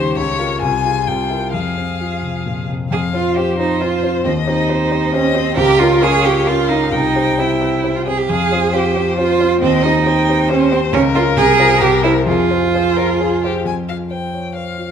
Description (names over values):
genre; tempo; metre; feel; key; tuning
quick classical-period movement for piano trio; 134 BPM; 3/4; straight; F minor; A4 = 440 Hz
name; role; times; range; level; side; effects
rich violin; melody; 0.0-14.9 s; G4 to Ab5; -22 LUFS; left 7 dB; none
clear cello; second line; 0.0-13.4 s; C4 to Ab4; -16 LUFS; right 5 dB; none
warm concert grand piano; accompaniment; 0.0-14.9 s; C2 to Db5; -18 LUFS; left 2 dB; none
room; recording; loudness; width
moderate concert hall reverb, RT60 2.2 s; close, detailed microphones; -13 LUFS; side -7 dB against mid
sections
0.0-2.9 A section; 2.9-13.7 B section; 13.7-14.9 B section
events
none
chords
0.2 Bbm/Db; 0.6 Fm/C; 1.1 C7; 1.5 Fm; 2.9 F5; 4.2 Cm/Eb; 5.6 Bbm/Db; 6.9 C; 8.3 Fm; 9.6 Cm/Eb; 10.9 Bbm/Db; 11.4 Fm/C; 11.8 C7; 12.3 Fm; 13.7 F5